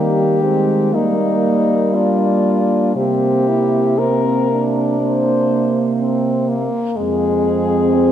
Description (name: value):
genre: classical, lyrical piece for horn quartet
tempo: 60 BPM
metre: 4/4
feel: rubato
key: unclear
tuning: A4 = 439 Hz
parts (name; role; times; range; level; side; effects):
- clear French horn; melody; 0.0-8.1 s; Eb4 to C5; -19 LUFS; left 4 dB; none
- dark French horn; second line; 0.0-8.1 s; G3 to C4; -20 LUFS; right 5 dB; none
- warm French horn; accompaniment; 0.0-8.1 s; Ab3 to Fb4; -21 LUFS; left 2 dB; none
- mellow French horn; bass; 0.0-8.1 s; F2 to G3; -20 LUFS; right 2 dB; none
room: wet church reverb, RT60 3.6 s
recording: none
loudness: -14 LUFS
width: side -10 dB against mid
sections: 0.0-8.1 A section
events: none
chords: 0.0 Eb; 0.9 Eb/G; 3.0 C5; 7.0 Fm